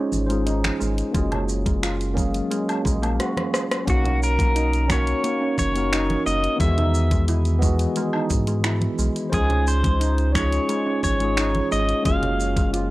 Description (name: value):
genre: sunset chillout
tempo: 88 BPM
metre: 4/4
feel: straight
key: B major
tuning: A4 = 441 Hz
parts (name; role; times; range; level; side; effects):
- tine electric piano; accompaniment; 0.0-12.9 s; D#3 to E#5; -25 LUFS; equal; auto-pan
- steel pan; arpeggios; 0.0-12.9 s; G#3 to G#4; -29 LUFS; right 2 dB; analog delay
- warm sub bass; bass; 0.1-12.9 s; F#1 to G#2; -23 LUFS; equal; none
- smooth R&B drum kit; drums; 0.1-12.9 s; finger snaps, hi-hat, rim click, shaker, woodblock; -29 LUFS; equal; none
- congas; percussion; 0.1-12.7 s; none; -33 LUFS; left 1 dB; none
- electronic kick drum; drums; 1.1-12.7 s; none; -23 LUFS; equal; none
- pedal steel guitar; melody; 3.9-12.7 s; F#4 to E#5; -25 LUFS; equal; none
room: little or no reverb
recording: dry, gritty hardware recording, cassette tape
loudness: -19 LUFS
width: side -18 dB against mid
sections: 0.0-3.9 A section; 3.9-12.9 B section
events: drum fill 3.2-3.9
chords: 0.0 C#maj9; 1.1 F#maj9; 3.9 Bmaj9; 6.6 Emaj9; 9.3 C#maj9; 12.1 F#maj9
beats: 0.46 | 1.15 1.83 2.51 3.19 | 3.87 4.55 5.24 5.92 | 6.60 7.28 7.96 8.65 | 9.33 10.01 10.69 11.37 | 12.05 12.74